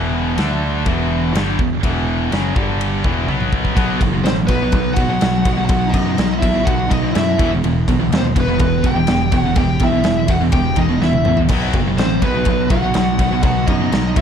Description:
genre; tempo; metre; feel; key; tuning
heavy metal; 124 BPM; 4/4; straight; unclear; A4 = 440 Hz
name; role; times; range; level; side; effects
distorted electric guitar; riff; 0.0-14.2 s; E2 to D4; -22 LUFS; left 10 dB; overdrive
scooped high-gain guitar; riff; 0.0-14.2 s; E2 to D4; -20 LUFS; right 9 dB; distortion
overdriven picked electric bass; bass; 0.0-14.2 s; E1 to F#2; -21 LUFS; equal; none
big rock drum kit; drums; 0.4-14.2 s; crash cymbal, kick drum, ride cymbal, snare drum, toms; -20 LUFS; equal; none
high-gain lead guitar; melody; 4.2-14.2 s; B4 to G5; -22 LUFS; left 1 dB; distortion
lead guitar through a small cranked amp; second line; 4.2-14.2 s; B3 to G4; -26 LUFS; right 2 dB; overdrive
room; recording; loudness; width
light reverb; dark, warm production; -14 LUFS; side -8 dB against mid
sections
0.0-3.8 A section; 3.8-14.2 B section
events
drum fill 3.3-3.8, 11.0-11.5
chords
0.4 D5; 0.9 Em; 2.6 G5; 3.0 E5; 3.3 B5; 3.8 B; 7.4 Em; 11.5 B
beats
0.38 0.87 1.35 | 1.83 2.32 2.80 3.29 | 3.77 4.25 4.73 5.22 | 5.70 6.18 6.67 7.15 | 7.63 8.12 8.60 9.08 | 9.57 10.05 10.53 11.02 | 11.50 11.98 12.47 12.95 | 13.43 13.91

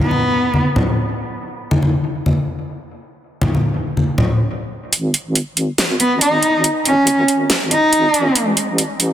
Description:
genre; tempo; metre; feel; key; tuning
deep dubstep; 140 BPM; 4/4; half-time; G# phrygian; A4 = 439 Hz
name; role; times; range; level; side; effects
warm cello; melody; 0.0-0.6, 6.0-8.3 s; B3 to D#4; -16 LUFS; equal; dub echo
congas; percussion; 0.0-4.3 s; none; -17 LUFS; left 1 dB; dub echo
deep soft wobble bass; bass; 4.9-9.1 s; G#1 to A1; -21 LUFS; equal; chorus, high-pass filter
dubstep drum kit; drums; 4.9-9.1 s; hi-hat, snare drum; -16 LUFS; right 1 dB; high-pass filter on hats, small room reverb, high-pass filter on snare
room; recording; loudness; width
moderate lush hall reverb, RT60 1.8 s; dense, heavily limited modern master; -14 LUFS; side -11 dB against mid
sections
0.0-4.9 A section; 4.9-9.1 B section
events
build-up 4.9-9.1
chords
0.0 N.C.; 4.9 G#5; 8.4 A5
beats
0.21 0.64 1.07 | 1.50 1.93 2.36 2.79 | 3.21 3.64 4.07 4.50 | 4.93 5.36 5.79 6.21 | 6.64 7.07 7.50 7.93 | 8.36 8.79

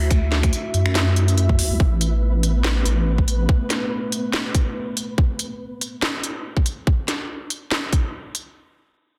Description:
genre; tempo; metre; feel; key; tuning
deep dubstep; 142 BPM; 4/4; swing 56% on 16ths, half-time; unclear; A4 = 441 Hz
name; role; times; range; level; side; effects
dark analog pad; sustained chords; 0.0-6.8 s; A3 to E5; -32 LUFS; equal; chorus, vintage 12-bit sampler grit
deep soft wobble bass; bass; 0.0-3.5 s; A1 to F#2; -21 LUFS; equal; chorus
flickering grainy texture; texture; 0.0-5.2 s; B3 to E5; -37 LUFS; equal; built-in reverb
electronic kick drum; drums; 0.1-8.0 s; none; -22 LUFS; equal; none
garage drum kit; drums; 0.1-8.4 s; finger snaps, hi-hat, snare drum; -27 LUFS; equal; soft clipping on snare
room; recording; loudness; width
light reverb; dense, heavily limited modern master; -21 LUFS; mono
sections
0.0-1.8 A section; 1.8-8.6 B section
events
drop 0.0-1.8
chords
0.0 D; 1.8 Asus2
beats
| 0.11 0.53 0.95 1.38 | 1.80 2.22 2.64 3.07 | 3.49 3.91 4.33 4.76 | 5.18 5.60 6.02 6.45 | 6.87 7.29 7.71 8.14

